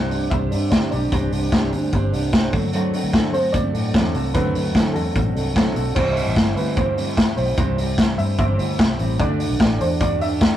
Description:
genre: jangly indie pop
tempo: 149 BPM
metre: 4/4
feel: straight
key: unclear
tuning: A4 = 443 Hz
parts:
  - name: warm upright piano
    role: melody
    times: 0.0-10.6 s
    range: A4 to F#5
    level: -27 LUFS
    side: right 1 dB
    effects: none
  - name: fingerpicked steel-string acoustic guitar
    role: accompaniment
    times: 0.0-10.6 s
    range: C3 to D5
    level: -26 LUFS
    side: right 2 dB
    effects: none
  - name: electric guitar at the edge of break-up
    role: arpeggios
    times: 0.0-10.6 s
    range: F#3 to A4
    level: -28 LUFS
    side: left 1 dB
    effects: none
  - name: vintage muted fingered electric bass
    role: bass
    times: 0.0-10.6 s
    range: G1 to A2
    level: -25 LUFS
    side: equal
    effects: none
  - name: raw garage drum kit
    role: drums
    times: 0.1-10.5 s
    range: crash cymbal, hi-hat, kick drum, snare drum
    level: -20 LUFS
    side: equal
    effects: none
room: moderate booth ambience, RT60 0.2 s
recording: rough rehearsal-room recording, warm saturation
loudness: -17 LUFS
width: side -11 dB against mid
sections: 0.0-6.0 A section; 6.0-10.6 B section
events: none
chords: 0.0 Csus2; 2.5 D7; 6.0 C; 9.2 D

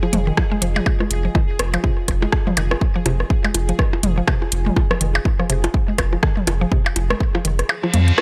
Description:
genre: minimal techno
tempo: 123 BPM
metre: 4/4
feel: swing 59% on 16ths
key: F minor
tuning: A4 = 440 Hz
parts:
  - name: mallet-like synth pluck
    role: riff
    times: 0.0-8.0 s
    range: C3 to Ab3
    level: -28 LUFS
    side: equal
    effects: chorus, sidechain pumping, delay
  - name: minimal click drum kit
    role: percussion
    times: 0.0-8.2 s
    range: percussion blips, rim click, toms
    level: -25 LUFS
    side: equal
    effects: delay
  - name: deep dark ambient pad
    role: texture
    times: 0.0-8.2 s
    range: F4 to Ab5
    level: -38 LUFS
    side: equal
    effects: chorus, built-in reverb, sidechain pumping
  - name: pulsing gated texture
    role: texture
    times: 0.0-8.2 s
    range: Ab4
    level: -37 LUFS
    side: equal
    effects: chorus, built-in reverb, sidechain pumping
  - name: saturated sub bass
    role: bass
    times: 0.1-8.1 s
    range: F1 to F2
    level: -22 LUFS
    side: equal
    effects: sidechain pumping
  - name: house drum kit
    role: drums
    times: 0.1-8.2 s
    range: hi-hat, rim click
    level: -25 LUFS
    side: equal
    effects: none
  - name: electronic kick drum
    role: drums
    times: 0.4-7.3 s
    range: none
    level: -22 LUFS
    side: equal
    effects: none
  - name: reverse cymbal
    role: sound effects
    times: 7.8-8.2 s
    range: none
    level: -26 LUFS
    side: equal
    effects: none
room: digital ambience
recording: none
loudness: -19 LUFS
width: mono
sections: 0.0-8.2 A section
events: kick drops out 7.7-8.2; reverse cymbal 7.8-8.2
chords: 0.0 Fm7

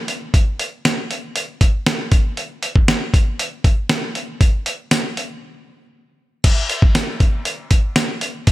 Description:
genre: pop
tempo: 118 BPM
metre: 4/4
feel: straight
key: none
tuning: none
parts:
  - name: dusty soul sampler-style drum kit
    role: drums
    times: 0.1-8.5 s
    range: crash cymbal, hi-hat, kick drum, snare drum, tambourine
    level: -16 LUFS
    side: equal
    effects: none
room: light reverb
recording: none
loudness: -16 LUFS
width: side -17 dB against mid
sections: 0.0-6.4 A section; 6.4-8.5 B section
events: break 5.4-6.4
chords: none

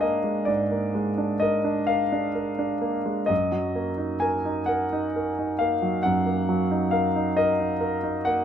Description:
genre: classical, romantic nocturne for solo piano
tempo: 42-46 BPM (dotted quarters)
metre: 12/8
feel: rubato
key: unclear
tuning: A4 = 439 Hz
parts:
  - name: clear concert grand piano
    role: solo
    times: 0.0-8.4 s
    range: Gb2 to Ab5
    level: -22 LUFS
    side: equal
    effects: none
room: light reverb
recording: minimal, uncompressed stereo recording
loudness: -22 LUFS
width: side -9 dB against mid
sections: 0.0-8.4 A section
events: none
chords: 0.0 Bb7/Ab; 3.3 Ebm/Gb

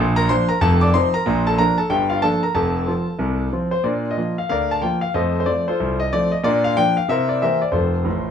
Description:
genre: jazz, stride piano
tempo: 185 BPM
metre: 4/4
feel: swing 62% on 8ths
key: Bb major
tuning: A4 = 437 Hz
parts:
  - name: clear concert grand piano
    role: solo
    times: 0.0-8.3 s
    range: F1 to D6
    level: -17 LUFS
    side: left 1 dB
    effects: none
room: moderate studio reverb, RT60 0.5 s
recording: small room ambience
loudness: -17 LUFS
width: side -8 dB against mid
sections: 0.0-3.8 A section; 3.8-8.3 B section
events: grand piano fill 8.1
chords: 0.0 Bb; 0.6 F7; 1.3 Bb; 1.9 Gm7; 2.6 F; 3.8 Bb; 4.5 Bb/D; 5.1 F; 6.4 Bb; 7.1 C7; 7.7 F

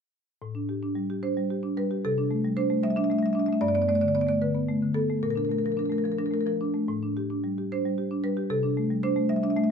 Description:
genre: classical, contemporary piece for solo marimba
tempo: 75 BPM (dotted quarters)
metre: 6/8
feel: rubato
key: A minor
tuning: A4 = 436 Hz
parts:
  - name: marimba with medium hard mallets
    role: solo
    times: 0.4-9.7 s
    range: G2 to E5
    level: -24 LUFS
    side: equal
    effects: none
room: moderate stone room reverb, RT60 1.2 s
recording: minimal, uncompressed stereo recording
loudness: -24 LUFS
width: side -6 dB against mid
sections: 0.4-9.7 A section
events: none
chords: 0.4 Am7; 2.0 C69; 3.6 Gadd9; 5.2 Bbmaj7; 6.9 Am7; 8.5 C69

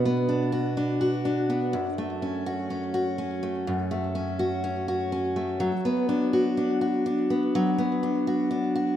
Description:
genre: pop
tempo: 62 BPM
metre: 4/4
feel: straight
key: B minor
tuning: A4 = 440 Hz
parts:
  - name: picked steel-string acoustic guitar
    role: solo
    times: 0.0-9.0 s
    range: F#2 to F#4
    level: -24 LUFS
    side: equal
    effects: ping-pong delay
room: wet lush hall reverb, RT60 2.5 s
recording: rough home demo mix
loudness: -24 LUFS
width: side -11 dB against mid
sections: 0.0-9.0 A section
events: none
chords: 0.0 Bm; 1.7 F#m

